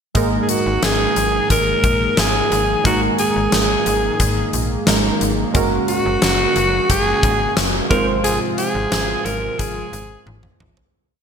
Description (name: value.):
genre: 1980s-style pop.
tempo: 89 BPM.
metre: 4/4.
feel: straight.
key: Ab mixolydian.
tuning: A4 = 439 Hz.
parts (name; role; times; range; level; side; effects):
warm analog keys; accompaniment; 0.1-11.0 s; Ab2 to C5; -23 LUFS; right 3 dB; chorus.
huge arena drum kit; drums; 0.1-10.9 s; hi-hat, kick drum, snare drum, toms; -20 LUFS; left 1 dB; gated reverb.
chorused pulse-width pad; sustained chords; 0.2-10.9 s; C3 to Ab4; -26 LUFS; equal; none.
slap-like FM bass; bass; 0.2-10.8 s; Gb1 to Bb1; -24 LUFS; left 1 dB; none.
breathy alto saxophone; melody; 0.4-10.3 s; Gb4 to Bb4; -19 LUFS; equal; none.
room: moderate lush hall reverb, RT60 2.3 s.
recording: bright 1980s-style digital production.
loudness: -15 LUFS.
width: side -7 dB against mid.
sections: 0.2-10.9 verse.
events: fade-out 8.2-10.9; drum fill 10.3-10.9.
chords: 0.2 Absus2; 5.5 Gbadd9; 7.9 Fm/Ab.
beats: | 0.15 0.83 1.50 2.18 | 2.85 3.53 4.20 4.87 | 5.55 6.22 6.90 7.57 | 8.24 8.92 9.59 10.27.